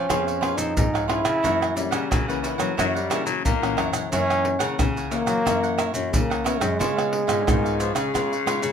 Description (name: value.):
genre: samba and choro.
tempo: 90 BPM.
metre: 4/4.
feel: straight.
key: unclear.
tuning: A4 = 437 Hz.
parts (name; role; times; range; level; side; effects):
breathy trombone; melody; 0.0-8.6 s; F#3 to E4; -24 LUFS; right 1 dB; none.
cavaquinho; accompaniment; 0.0-8.7 s; E4 to F#5; -30 LUFS; right 6 dB; none.
nylon-string guitar; accompaniment; 0.0-8.7 s; F#2 to G#4; -30 LUFS; left 7 dB; none.
nylon-string guitar; bass; 0.0-8.7 s; E#2 to F#3; -29 LUFS; equal; none.
maracas, surdo, pandeiro and tamborim; percussion; 0.1-8.7 s; none; -26 LUFS; right 1 dB; none.
growling tenor saxophone; second line; 1.8-8.7 s; C#3 to A#3; -27 LUFS; left 6 dB; none.
room: moderate studio ambience, RT60 0.5 s.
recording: minimal, uncompressed stereo recording.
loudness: -20 LUFS.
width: side -7 dB against mid.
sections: 0.0-8.7 A section.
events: none.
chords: 0.0 C#7/E#; 1.4 F#7; 6.8 C#7.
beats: 0.10 0.77 | 1.44 2.11 2.78 3.45 | 4.12 4.79 5.46 6.13 | 6.80 7.47 8.14.